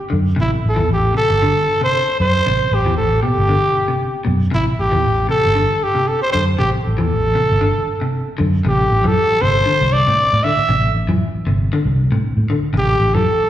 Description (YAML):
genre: afrobeat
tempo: 116 BPM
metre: 4/4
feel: swing 55% on 16ths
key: A dorian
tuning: A4 = 440 Hz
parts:
  - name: growling trumpet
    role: melody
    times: 0.0-13.5 s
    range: E4 to E5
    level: -17 LUFS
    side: equal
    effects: plate reverb, slapback echo
  - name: electric guitar at the edge of break-up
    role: arpeggios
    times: 0.1-13.3 s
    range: B2 to E3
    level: -22 LUFS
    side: left 2 dB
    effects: plate reverb, slapback echo
  - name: fingered electric bass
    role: bass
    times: 0.1-13.4 s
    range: G1 to A2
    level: -17 LUFS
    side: equal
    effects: none
room: moderate club reverb, RT60 0.7 s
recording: live gig heard through the venue's PA, recital hall reverb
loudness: -14 LUFS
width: side -12 dB against mid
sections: 0.0-8.7 A section; 8.7-13.5 B section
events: none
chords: 0.0 Am7; 8.7 Am